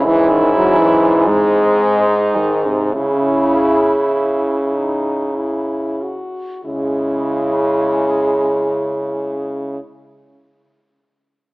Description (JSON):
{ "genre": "classical, lyrical piece for horn quartet", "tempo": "30-43 BPM (dotted quarters)", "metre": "6/8", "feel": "rubato", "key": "C# minor", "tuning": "A4 = 440 Hz", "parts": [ { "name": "warm French horn", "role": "melody", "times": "0.0-9.8 s", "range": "B#3 to F#4", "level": "-24 LUFS", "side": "left 1 dB", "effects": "none" }, { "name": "clear French horn", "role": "second line", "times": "0.0-9.8 s", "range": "G#3 to E4", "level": "-21 LUFS", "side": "right 2 dB", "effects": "none" }, { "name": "mellow French horn", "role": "accompaniment", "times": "0.0-9.8 s", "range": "B#2 to G#3", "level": "-18 LUFS", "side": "left 1 dB", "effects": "none" }, { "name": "warm French horn", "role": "bass", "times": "0.0-9.8 s", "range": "G#2 to C#3", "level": "-18 LUFS", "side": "right 1 dB", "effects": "none" } ], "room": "moderate concert hall reverb, RT60 2.0 s", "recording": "AM radio sound", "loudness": "-14 LUFS", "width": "side -22 dB against mid", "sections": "0.0-6.6 A section; 6.6-10.2 B section", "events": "slowing down 0.0-6.6", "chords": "0.0 C#m/G#; 1.3 G#; 2.9 C#m", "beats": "1.29 | 2.95 4.73 | 6.65 8.42" }